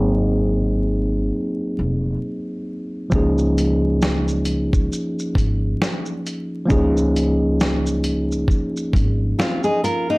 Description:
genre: lo-fi hip hop.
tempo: 67 BPM.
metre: 4/4.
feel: swing 57% on 16ths.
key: Db major.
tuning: A4 = 437 Hz.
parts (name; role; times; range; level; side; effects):
tine electric piano; accompaniment; 0.0-10.2 s; F3 to Ab4; -21 LUFS; equal; none.
upright bass; bass; 0.0-9.3 s; F1 to Db2; -22 LUFS; equal; none.
dusty soul sampler-style drum kit; drums; 3.1-10.1 s; hi-hat, kick drum, shaker, snare drum; -21 LUFS; equal; none.
nylon-string guitar; second line; 9.4-10.2 s; Bb3 to Bb4; -18 LUFS; equal; none.
room: light reverb.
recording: dry, gritty hardware recording, vinyl crackle.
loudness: -18 LUFS.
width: side -25 dB against mid.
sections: 0.0-10.2 A section.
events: none.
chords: 0.0 Ab9; 3.1 Db69.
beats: 0.43 1.33 2.22 | 3.12 4.01 4.91 5.80 | 6.70 7.60 8.49 9.39.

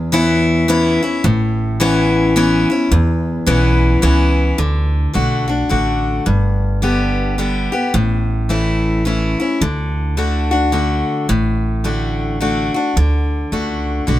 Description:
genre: honky-tonk and classic country.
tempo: 108 BPM.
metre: 3/4.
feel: swing 61% on 8ths.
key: D major.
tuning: A4 = 439 Hz.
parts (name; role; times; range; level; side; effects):
picked steel-string acoustic guitar; accompaniment; 0.0-14.2 s; E2 to G4; -16 LUFS; left 2 dB; none.
upright bass; bass; 0.0-14.2 s; G1 to E2; -18 LUFS; right 1 dB; none.
room: little or no reverb.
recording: none.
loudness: -14 LUFS.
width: side -14 dB against mid.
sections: 0.0-4.6 A section; 4.6-14.2 B section.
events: none.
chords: 0.0 Aadd9; 4.6 D; 6.3 G; 7.9 A; 9.6 D.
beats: 0.13 0.69 | 1.25 1.80 2.36 | 2.92 3.48 4.03 | 4.59 5.15 5.71 | 6.26 6.82 7.38 | 7.94 8.50 9.06 | 9.62 10.17 10.73 | 11.29 11.85 12.41 | 12.96 13.52 14.08.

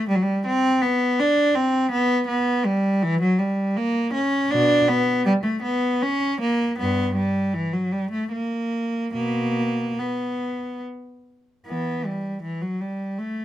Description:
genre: classical, baroque-style suite movement for unaccompanied cello.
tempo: 69-83 BPM.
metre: 3/4.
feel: rubato.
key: B minor.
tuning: A4 = 440 Hz.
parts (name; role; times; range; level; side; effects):
rich cello; solo; 0.0-13.4 s; G2 to D4; -20 LUFS; equal; none.
room: light reverb.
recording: none.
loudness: -20 LUFS.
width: side -12 dB against mid.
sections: 0.0-11.7 A section; 11.7-13.4 A section.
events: none.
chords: none.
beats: | 0.09 0.82 1.55 | 2.28 3.02 3.76 | 4.51 5.25 6.01 | 6.78 7.53 8.32 | 9.13 9.98 10.82 | 11.66 12.43 13.19.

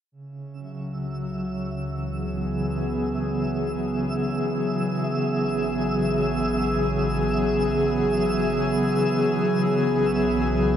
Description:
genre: ambient.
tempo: free time.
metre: none.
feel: none.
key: C# minor.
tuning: A4 = 440 Hz.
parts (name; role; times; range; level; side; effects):
airy breathy pad; sustained chords; 0.1-10.8 s; C#3 to G#4; -22 LUFS; equal; chorus, tremolo.
deep rumbling drone; bass; 1.0-10.8 s; A1 to C#2; -34 LUFS; equal; built-in reverb.
twinkling granular texture; texture; 1.0-10.8 s; E5 to E6; -33 LUFS; equal; built-in reverb.
room: wet huge ambient reverb, RT60 8.8 s.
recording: none.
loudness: -22 LUFS.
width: side -9 dB against mid.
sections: 0.1-10.8 A section.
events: fade-in on synth drone 0.1-10.8; fade-in on synth texture 0.1-10.8.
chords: 0.1 C#m7; 4.7 A6; 9.3 Bsus24.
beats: free time.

